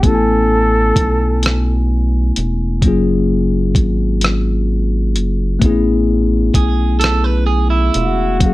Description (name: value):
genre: slow six-eight R&B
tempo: 43 BPM (dotted quarters)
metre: 6/8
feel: straight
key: unclear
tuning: A4 = 440 Hz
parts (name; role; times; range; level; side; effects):
- mellow flugelhorn; melody; 0.0-1.9, 8.0-8.5 s; F#4 to A4; -17 LUFS; right 1 dB; slapback echo
- tine electric piano; accompaniment; 0.0-8.5 s; F#3 to G#5; -18 LUFS; left 3 dB; none
- rubbery square bass; bass; 0.0-8.5 s; E1 to B1; -16 LUFS; equal; none
- dusty soul sampler-style drum kit; drums; 0.0-8.5 s; hi-hat, kick drum, rim click; -15 LUFS; equal; overdrive
- electric guitar at the edge of break-up; second line; 6.6-8.4 s; E4 to B4; -20 LUFS; right 7 dB; slapback echo
room: light reverb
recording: none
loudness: -12 LUFS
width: side -18 dB against mid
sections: 0.0-8.5 A section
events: none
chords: 0.0 Amaj9; 2.8 F#maj9; 5.6 Amaj9